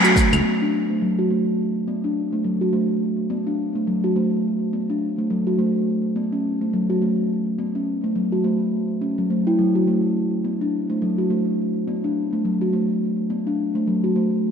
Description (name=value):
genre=downtempo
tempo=105 BPM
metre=4/4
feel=swing 58% on 16ths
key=B minor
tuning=A4 = 440 Hz
part: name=steel tongue drum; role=arpeggios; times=0.0-14.3 s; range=F#3 to F#4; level=-20 LUFS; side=equal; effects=low-pass filter, digital delay
room=wet lush hall reverb, RT60 1.9 s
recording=rough home demo mix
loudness=-19 LUFS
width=side -7 dB against mid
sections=0.4-14.5 A section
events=none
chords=none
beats=| 0.45 1.02 1.59 2.16 | 2.73 3.30 3.88 4.45 | 5.02 5.59 6.16 6.73 | 7.30 7.88 8.45 9.02 | 9.59 10.16 10.73 11.30 | 11.88 12.45 13.02 13.59 | 14.16